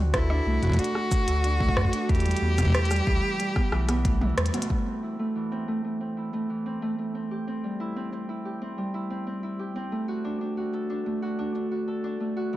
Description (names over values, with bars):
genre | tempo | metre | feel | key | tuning
IDM | 92 BPM | 4/4 | straight | A dorian | A4 = 440 Hz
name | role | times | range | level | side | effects
Celtic harp | arpeggios | 0.0-12.6 s | B2 to A4 | -29 LUFS | right 1 dB | low-pass filter, tape echo
warm sub bass | bass | 0.0-4.5 s | B1 to F#2 | -25 LUFS | equal | none
rich cello | melody | 0.1-4.4 s | E4 to G4 | -29 LUFS | equal | analog delay
electronic kick drum | drums | 0.1-4.8 s | none | -25 LUFS | equal | studio reverb
glitchy drum kit | drums | 0.1-11.7 s | cabasa, hi-hat, rim click, toms | -30 LUFS | equal | low-pass filter on perc, studio reverb, low-pass filter on hats, low-pass filter on snare, low-pass filter on toms
room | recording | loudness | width
little or no reverb | dry, gritty hardware recording | -25 LUFS | side -15 dB against mid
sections
0.0-4.7 A section; 4.7-12.6 B section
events
drum fill 4.4-4.7; band accent 4.4-4.7; filter sweep on harp 4.7-12.6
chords
0.0 D7; 2.1 Em7; 4.7 Am; 7.3 C; 9.9 D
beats
0.14 0.79 1.44 | 2.09 2.75 3.40 4.05 | 4.70 5.36 6.01 6.66 | 7.31 7.96 8.62 9.27 | 9.92 10.57 11.22 11.88 | 12.53